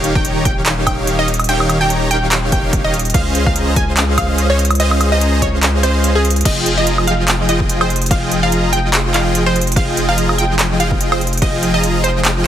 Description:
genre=future bass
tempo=145 BPM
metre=4/4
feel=swing 55% on 16ths, half-time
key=F minor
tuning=A4 = 439 Hz
part: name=wide unison pluck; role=melody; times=0.0-12.3 s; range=Ab4 to Ab5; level=-20 LUFS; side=right 1 dB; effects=sidechain pumping, tape echo
part: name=supersaw chords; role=riff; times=0.0-12.4 s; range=Eb3 to Bb5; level=-18 LUFS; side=equal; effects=sidechain pumping
part: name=saturated sub bass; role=bass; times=0.0-12.5 s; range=Eb1 to Db2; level=-18 LUFS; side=equal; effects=sidechain pumping
part: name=big-room dance drum kit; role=drums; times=0.0-12.3 s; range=crash cymbal, handclaps, hi-hat, woodblock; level=-19 LUFS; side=right 1 dB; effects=none
part: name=electronic kick drum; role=drums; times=0.2-11.5 s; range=none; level=-18 LUFS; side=equal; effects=none
room=light reverb, digital ambience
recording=heavily compressed radio sound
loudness=-12 LUFS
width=side -10 dB against mid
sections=0.0-6.5 A section; 6.5-12.5 A section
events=drop 0.0-6.5, 6.5-12.5; kick drops out 5.6-6.5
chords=0.0 Eb7; 3.1 Dbmaj9; 6.5 Fm7

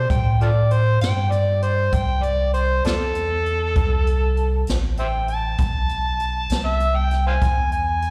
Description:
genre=slow blues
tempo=66 BPM (dotted quarters)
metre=12/8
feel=straight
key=A minor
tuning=A4 = 440 Hz
part: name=overdriven harmonica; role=second line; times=0.0-8.1 s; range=D4 to A5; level=-25 LUFS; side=equal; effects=slapback echo
part: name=warm sub bass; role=bass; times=0.0-8.1 s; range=A1 to A2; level=-23 LUFS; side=equal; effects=none
part: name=jazz brush drum kit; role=drums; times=0.1-8.1 s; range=hi-hat, kick drum, snare drum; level=-26 LUFS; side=equal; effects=none
room=little or no reverb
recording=live gig heard through the venue's PA, recital hall reverb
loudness=-21 LUFS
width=mono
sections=0.0-8.1 A section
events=harmonica solo 0.0-8.1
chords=0.1 Am7; 7.4 E

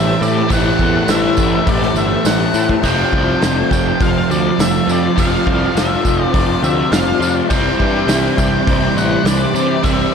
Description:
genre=rock, shoegaze and dream pop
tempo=103 BPM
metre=4/4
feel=straight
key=unclear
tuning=A4 = 444 Hz
part: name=octave-fuzz lead guitar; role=melody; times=0.0-10.1 s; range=D5 to G5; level=-21 LUFS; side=left 2 dB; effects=distortion, analog delay
part: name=string machine, violins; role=sustained chords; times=0.0-10.1 s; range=F4 to C6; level=-24 LUFS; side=equal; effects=ensemble chorus
part: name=overdriven electric guitar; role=riff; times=0.0-10.1 s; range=F2 to C4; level=-20 LUFS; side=equal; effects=none
part: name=overdriven semi-hollow guitar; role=riff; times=0.0-10.1 s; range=A2 to F4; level=-22 LUFS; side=right 9 dB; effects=reverse reverb
part: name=raw garage guitar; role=riff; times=0.0-10.1 s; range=F2 to F4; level=-21 LUFS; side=left 8 dB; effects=overdrive, analog chorus
part: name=fuzz picked electric bass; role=bass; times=0.0-10.0 s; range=F1 to C3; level=-20 LUFS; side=equal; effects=overdrive
part: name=tambourine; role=percussion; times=0.2-10.0 s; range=none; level=-31 LUFS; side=right 10 dB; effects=none
part: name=loose indie drum kit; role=drums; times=0.5-10.0 s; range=hi-hat, kick drum, snare drum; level=-20 LUFS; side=equal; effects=none
room=moderate lush hall reverb, RT60 1.8 s, small room ambience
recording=dreamy mix soaked in reverb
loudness=-12 LUFS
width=side -6 dB against mid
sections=0.0-10.1 A section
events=none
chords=0.0 Am7; 2.8 F6; 7.5 Cmaj7

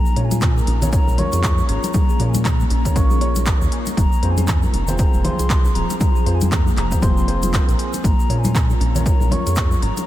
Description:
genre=afro house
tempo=118 BPM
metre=4/4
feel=swing 58% on 16ths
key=Bb minor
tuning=A4 = 440 Hz
part: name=mellow hollow concert flute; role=melody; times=0.0-10.1 s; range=Ab5 to Db6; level=-28 LUFS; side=left 1 dB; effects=diffuse ambient delay
part: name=ethereal airy pad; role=sustained chords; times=0.0-10.1 s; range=F3 to Ab4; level=-30 LUFS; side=left 2 dB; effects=ensemble chorus, built-in reverb, phaser, vintage 12-bit sampler grit, sidechain pumping
part: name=kalimba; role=arpeggios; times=0.0-10.1 s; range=F3 to Bb4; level=-30 LUFS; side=right 1 dB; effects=sidechain pumping, diffuse ambient delay
part: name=tube shaker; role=percussion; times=0.1-10.1 s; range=none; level=-35 LUFS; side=equal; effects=none
part: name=felt-muted upright piano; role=stabs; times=0.2-10.1 s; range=C4 to Db5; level=-29 LUFS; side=left 2 dB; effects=sidechain pumping, diffuse ambient delay
part: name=round analog bass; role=bass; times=0.2-9.9 s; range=Eb1 to Bb2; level=-20 LUFS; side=equal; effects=sidechain pumping
part: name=afro-pop drum kit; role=drums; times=0.2-10.1 s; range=handclaps, hi-hat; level=-28 LUFS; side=equal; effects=none
part: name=congas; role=percussion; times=0.2-10.1 s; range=none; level=-26 LUFS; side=left 2 dB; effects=none
part: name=electronic kick drum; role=drums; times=0.4-9.7 s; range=none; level=-18 LUFS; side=equal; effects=overdrive
room=light reverb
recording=none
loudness=-15 LUFS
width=side -14 dB against mid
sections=0.0-10.1 A section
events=none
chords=0.0 Bbm; 4.0 Fm; 8.0 Bbm

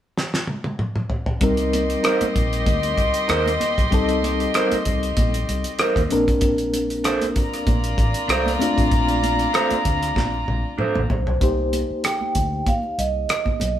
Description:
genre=lush 1970s-style soul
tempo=96 BPM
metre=4/4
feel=swing 54% on 16ths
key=unclear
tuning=A4 = 440 Hz
part: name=cloth-damped thuddy drum kit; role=drums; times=0.2-13.8 s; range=hi-hat, kick drum, rim click, snare drum, toms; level=-23 LUFS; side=equal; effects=none
part: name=warm chamber violin section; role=second line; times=1.4-11.1 s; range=F4 to C6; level=-24 LUFS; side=left 1 dB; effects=none
part: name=reed electric piano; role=accompaniment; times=1.4-13.8 s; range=G3 to C5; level=-25 LUFS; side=left 2 dB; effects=tremolo
part: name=vintage muted fingered electric bass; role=bass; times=1.4-13.8 s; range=A1 to Eb2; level=-26 LUFS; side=equal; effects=none
part: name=congas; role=percussion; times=1.4-13.8 s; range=none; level=-32 LUFS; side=right 3 dB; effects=none
part: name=electric guitar through a small old amp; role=riff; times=2.0-11.0 s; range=D4 to C5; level=-23 LUFS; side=right 4 dB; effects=none
part: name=vibraphone with soft mallets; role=melody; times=11.1-13.8 s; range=C5 to G5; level=-25 LUFS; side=right 3 dB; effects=none
room=moderate stone room reverb, RT60 0.9 s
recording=band playing live in one room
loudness=-18 LUFS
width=side -11 dB against mid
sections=0.0-1.4 A section; 1.4-11.4 B section; 11.4-13.8 C section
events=drum fill 0.2-1.4, 10.2-11.4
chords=0.0 N.C.; 1.4 Cm7; 6.1 Bbmaj9; 11.4 Cm7

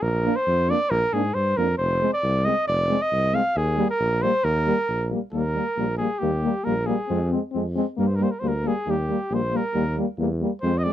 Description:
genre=balkan folk, Balkan brass band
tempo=136 BPM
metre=2/4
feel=straight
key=Eb major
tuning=A4 = 440 Hz
part: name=warm flugelhorn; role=melody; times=0.0-10.9 s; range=G4 to F5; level=-24 LUFS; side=equal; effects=none
part: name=warm tuba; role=bass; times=0.0-10.9 s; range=F1 to Ab2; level=-26 LUFS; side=equal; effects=none
part: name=mellow French horn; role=accompaniment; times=0.2-10.9 s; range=Bb3 to D4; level=-28 LUFS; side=left 8 dB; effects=none
part: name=warm euphonium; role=accompaniment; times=0.3-10.9 s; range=G3 to Bb3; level=-28 LUFS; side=right 6 dB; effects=none
room=light reverb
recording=close, detailed microphones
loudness=-21 LUFS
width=side -12 dB against mid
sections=0.0-5.3 A section; 5.3-10.9 B section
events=flugelhorn solo 5.3-10.9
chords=0.0 Bb; 1.8 Fm; 3.6 Eb; 7.1 Fm; 8.0 Gm; 8.9 Eb

